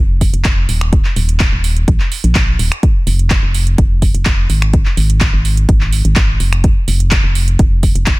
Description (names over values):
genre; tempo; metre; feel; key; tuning
piano house; 126 BPM; 4/4; straight; F minor; A4 = 441 Hz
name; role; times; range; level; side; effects
organ-like FM bass; bass; 0.0-8.2 s; Eb1 to Bb1; -14 LUFS; equal; sidechain pumping
electronic kick drum; drums; 0.2-8.2 s; none; -13 LUFS; equal; none
house drum kit; drums; 0.2-8.2 s; finger snaps, handclaps, hi-hat; -20 LUFS; right 2 dB; soft clipping on snare
room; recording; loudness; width
digital ambience; dense, heavily limited modern master; -11 LUFS; side -21 dB against mid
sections
0.0-8.2 A section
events
none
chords
none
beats
0.45 | 0.93 1.40 1.88 2.35 | 2.83 3.31 3.78 4.26 | 4.74 5.21 5.69 6.16 | 6.64 7.12 7.59 8.07